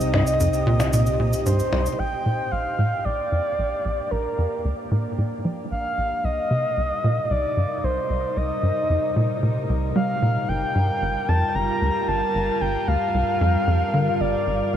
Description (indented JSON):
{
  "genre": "ambient, sequencer-driven space music",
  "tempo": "113 BPM",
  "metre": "4/4",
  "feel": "straight",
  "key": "Bb major",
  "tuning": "A4 = 440 Hz",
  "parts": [
    { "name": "breathy flute-like synth lead", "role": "melody", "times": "0.0-14.8 s", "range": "Bb4 to Bb5", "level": "-24 LUFS", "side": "equal", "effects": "chorus, tape echo" },
    { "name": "evolving wavetable pad", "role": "sustained chords", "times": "0.0-14.8 s", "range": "G2 to Bb4", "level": "-28 LUFS", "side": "equal", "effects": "chorus, built-in reverb" },
    { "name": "tight sequencer bass", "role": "riff", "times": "0.0-14.8 s", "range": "F1 to G3", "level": "-24 LUFS", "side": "equal", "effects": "wide subtle chorus, tape echo" },
    { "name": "analog drone", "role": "bass", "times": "0.0-2.0 s", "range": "C2", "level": "-31 LUFS", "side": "equal", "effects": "chorus, phaser" },
    { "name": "shaker and percussion blips", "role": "percussion", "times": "0.0-2.0 s", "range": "none", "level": "-30 LUFS", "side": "left 2 dB", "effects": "tape echo" }
  ],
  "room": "moderate huge ambient reverb, RT60 8.2 s",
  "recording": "none",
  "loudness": "-20 LUFS",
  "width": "side -10 dB against mid",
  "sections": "0.0-2.0 A section; 2.0-14.8 B section",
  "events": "fade-in on ambient pad 2.0-14.8; filter sweep on analog synth bass 2.0-14.8",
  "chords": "0.0 Cm; 2.0 Bb6; 6.2 Cm7; 10.5 Gm7"
}